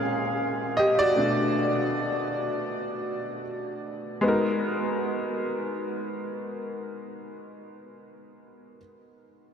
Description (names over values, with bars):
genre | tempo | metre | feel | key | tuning
R&B | free time | none | none | unclear | A4 = 440 Hz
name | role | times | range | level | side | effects
bright grand piano | solo | 0.0-9.5 s | A#2 to G5 | -25 LUFS | equal | none
room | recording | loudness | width
wet huge ambient reverb, RT60 7.5 s | dreamy mix soaked in reverb | -25 LUFS | side -7 dB against mid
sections
0.0-4.2 A section; 4.2-7.3 B section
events
grand piano solo 0.0-4.2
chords
0.0 A#m7; 1.2 Bm7; 4.2 G#m9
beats
free time